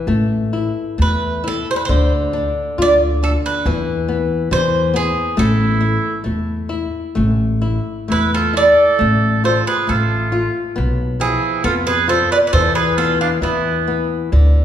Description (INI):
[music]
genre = fado-style ballad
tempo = 64-70 BPM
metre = 2/4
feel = rubato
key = A harmonic minor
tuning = A4 = 437 Hz
[part]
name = flamenco guitar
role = accompaniment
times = 0.0-14.6 s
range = D3 to F4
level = -20 LUFS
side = left 4 dB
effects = none
[part]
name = upright bass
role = bass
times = 0.1-14.6 s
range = A1 to F2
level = -19 LUFS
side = equal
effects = none
[part]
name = Irish bouzouki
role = melody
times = 1.0-14.1 s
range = E4 to D5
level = -18 LUFS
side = right 1 dB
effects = none
[part]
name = warm oboe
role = second line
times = 5.4-14.1 s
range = B3 to B4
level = -20 LUFS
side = right 5 dB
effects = none
[sound]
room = wet recital hall reverb, RT60 1.7 s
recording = recorded in a church or concert hall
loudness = -14 LUFS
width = side -10 dB against mid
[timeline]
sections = 0.0-14.6 A section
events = none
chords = 0.1 A5; 1.9 Dm; 3.7 E5; 5.4 A5; 9.0 Bm7b5/A (rootless); 10.8 Bdim7(no3); 12.5 E5